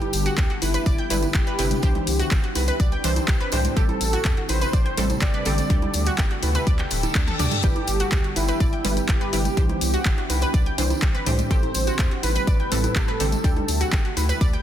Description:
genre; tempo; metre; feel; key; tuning
progressive house; 124 BPM; 4/4; straight; G major; A4 = 442 Hz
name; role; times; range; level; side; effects
wide unison lead; melody; 0.0-13.8 s; E4 to D5; -29 LUFS; equal; sidechain pumping, tape echo
shimmering ambient pad; sustained chords; 0.0-14.6 s; C3 to A4; -31 LUFS; equal; chorus, built-in reverb, sidechain pumping
wide unison pluck; stabs; 0.0-14.6 s; G2 to C5; -29 LUFS; right 2 dB; sidechain pumping, tape echo
saturated sub bass; bass; 0.0-14.6 s; D1 to E2; -26 LUFS; equal; sidechain pumping
house drum kit; drums; 0.0-14.6 s; handclaps, hi-hat, toms; -29 LUFS; left 2 dB; none
congas; percussion; 0.0-14.3 s; none; -33 LUFS; right 5 dB; sidechain pumping on perc
tambourine; percussion; 0.1-14.5 s; none; -36 LUFS; right 3 dB; none
analog pluck; arpeggios; 0.3-14.6 s; D4 to G6; -31 LUFS; equal; chorus, sidechain pumping, tape echo
electronic kick drum; drums; 0.4-14.5 s; none; -21 LUFS; equal; none
reverse cymbal; sound effects; 7.0-7.6 s; none; -31 LUFS; left 5 dB; none
room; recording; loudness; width
little or no reverb; dense, heavily limited modern master; -19 LUFS; side -10 dB against mid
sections
0.0-14.6 A section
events
reverse cymbal 7.0-7.6; drum fill 7.3-7.6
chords
0.0 G6; 1.8 Cadd9; 3.8 Am7; 5.7 Dsus4; 7.6 G6; 9.6 Cadd9; 11.5 Am7; 13.4 Dsus4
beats
0.38 0.86 1.35 | 1.83 2.31 2.80 3.28 | 3.77 4.25 4.73 5.22 | 5.70 6.18 6.67 7.15 | 7.64 8.12 8.60 9.09 | 9.57 10.06 10.54 11.02 | 11.51 11.99 12.47 12.96 | 13.44 13.93 14.41

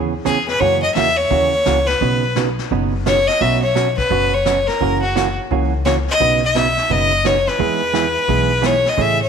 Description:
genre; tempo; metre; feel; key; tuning
country, western swing; 172 BPM; 4/4; swing 64% on 8ths; E major; A4 = 440 Hz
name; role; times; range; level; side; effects
hollow-body jazz guitar; accompaniment; 0.0-9.2 s; B2 to B4; -20 LUFS; right 9 dB; none
upright bass; bass; 0.0-9.3 s; F#1 to F#2; -22 LUFS; left 2 dB; none
clear fiddle; melody; 0.3-9.3 s; F#4 to E5; -17 LUFS; left 2 dB; none
vintage brush drum kit; drums; 0.3-9.3 s; brushed snare drum, hi-hat, kick drum, snare drum; -28 LUFS; left 9 dB; none
room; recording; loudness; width
moderate echo chamber reverb, RT60 1.8 s, small room reverb; 1960s-style stereo with parts hard left and right; -14 LUFS; side -7 dB against mid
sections
0.0-9.3 A section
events
none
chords
0.0 C#m7; 0.6 F#7; 2.0 Badd9; 3.4 Bsus2; 4.8 F#7; 6.2 Badd9; 7.6 E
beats
0.26 | 0.61 0.96 1.31 1.66 | 2.01 2.36 2.71 3.06 | 3.40 3.75 4.10 4.45 | 4.80 5.15 5.50 5.85 | 6.20 6.54 6.89 7.24 | 7.59 7.94 8.28 8.63 | 8.98

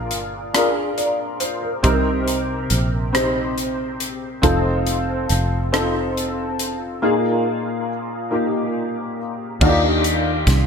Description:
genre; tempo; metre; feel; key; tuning
slow gospel; 46 BPM (dotted quarters); 6/8; straight; unclear; A4 = 440 Hz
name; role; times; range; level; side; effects
warm upright piano; accompaniment; 0.0-10.7 s; Bb2 to D5; -20 LUFS; left 1 dB; ensemble chorus
fingered electric bass; bass; 0.0-10.7 s; F1 to Eb2; -22 LUFS; right 1 dB; none
crisp fusion drum kit; drums; 0.1-10.7 s; crash cymbal, hi-hat, kick drum, rim click, snare drum; -22 LUFS; equal; gated reverb
room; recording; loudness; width
light reverb, small room reverb; bright 1980s-style digital production; -18 LUFS; side -6 dB against mid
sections
0.0-9.6 A section; 9.6-10.7 B section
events
none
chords
0.0 Bb7; 1.8 Cm7; 4.4 F7; 7.0 Bb7sus4; 9.6 Ebmaj9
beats
0.55 | 1.84 3.14 | 4.43 5.73 | 7.02 8.32 | 9.61

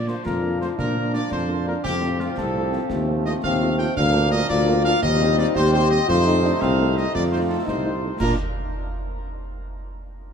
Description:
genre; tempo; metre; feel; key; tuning
military-style march for wind band; 113 BPM (dotted quarters); 6/8; straight; Bb major; A4 = 440 Hz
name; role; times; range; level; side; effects
mellow trumpet section; melody; 0.0-8.4 s; F4 to G5; -26 LUFS; equal; none
warm trombone section; sustained chords; 0.0-8.4 s; F3 to Eb4; -30 LUFS; right 2 dB; none
mellow tuba; bass; 0.0-8.4 s; C2 to Bb2; -23 LUFS; right 1 dB; none
mellow French horn section; accompaniment; 0.1-8.4 s; G3 to G4; -32 LUFS; right 3 dB; none
concert snare drum, concert bass drum and clash cymbals; drums; 0.1-8.4 s; none; -32 LUFS; right 1 dB; none
warm euphonium; second line; 0.2-7.9 s; C4 to G4; -25 LUFS; left 4 dB; none
room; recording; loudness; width
moderate cathedral reverb, RT60 5.5 s; in a vast, echoing space; -19 LUFS; side -7 dB against mid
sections
0.0-8.2 A section; 8.2-9.3 B section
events
none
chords
0.0 Bb; 1.8 F; 2.9 F7/Eb; 4.0 Bb/D; 5.0 Cm/Eb; 6.1 F7; 8.2 Bb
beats
0.25 | 0.78 1.31 | 1.84 2.37 | 2.90 3.44 | 3.96 4.50 | 5.03 5.55 | 6.08 6.62 | 7.14 7.67 | 8.21

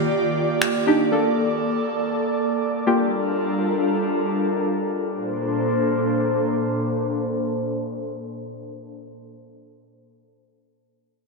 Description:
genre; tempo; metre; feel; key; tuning
dance-pop; free time; none; none; Bb major; A4 = 440 Hz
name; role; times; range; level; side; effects
airy breathy pad; sustained chords; 0.0-8.9 s; Bb2 to D5; -22 LUFS; equal; chorus, low-pass filter
downlifter; sound effects; 0.0-1.1 s; none; -45 LUFS; equal; none
electronic finger snaps; drums; 0.6-0.7 s; none; -26 LUFS; equal; overdrive
deep mellow chord stab; accompaniment; 0.9-3.1 s; Bb3 to A4; -20 LUFS; left 1 dB; chorus, low-pass filter
room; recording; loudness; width
wet lush hall reverb, RT60 1.9 s, digital ambience; dreamy mix soaked in reverb; -20 LUFS; side -2 dB against mid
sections
0.0-5.1 A section; 5.1-9.1 B section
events
filter sweep 0.0-5.1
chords
0.0 Ebmaj7; 1.1 Bbmaj7; 2.9 Gm7; 5.1 Bbmaj7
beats
free time

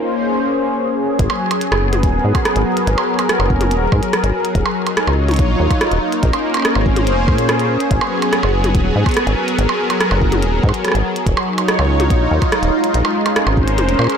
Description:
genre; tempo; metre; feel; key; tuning
IDM; 143 BPM; 4/4; straight; G# dorian; A4 = 441 Hz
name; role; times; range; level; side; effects
warm analog pad; sustained chords; 0.0-14.2 s; F#3 to C#5; -17 LUFS; equal; chorus, vintage 12-bit sampler grit
deep acid bass; bass; 1.2-14.1 s; D#1 to A#2; -16 LUFS; equal; none
electronic kick drum; drums; 1.2-13.7 s; none; -18 LUFS; equal; none
glitchy drum kit; drums; 1.2-14.2 s; hi-hat, percussion blips, rim click, toms; -20 LUFS; right 1 dB; low-pass filter on hats, low-pass filter on perc, soft clipping on snare, low-pass filter on snare, low-pass filter on toms, ping-pong delay
room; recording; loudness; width
light reverb; blown-out, overdriven recording, overdrive; -14 LUFS; side -7 dB against mid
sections
0.0-1.2 A section; 1.2-14.2 B section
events
break 0.0-1.2; kick drops out 13.8-14.2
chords
0.0 A#m9; 1.2 G#m9; 4.6 D#m9; 6.0 A#m9; 7.9 G#m9; 11.3 D#m9; 12.7 A#m9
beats
0.35 0.78 | 1.19 1.61 2.03 2.45 | 2.87 3.29 3.71 4.13 | 4.55 4.97 5.39 5.81 | 6.23 6.65 7.07 7.49 | 7.91 8.33 8.75 9.17 | 9.59 10.01 10.43 10.85 | 11.26 11.68 12.10 12.52 | 12.94 13.36 13.78

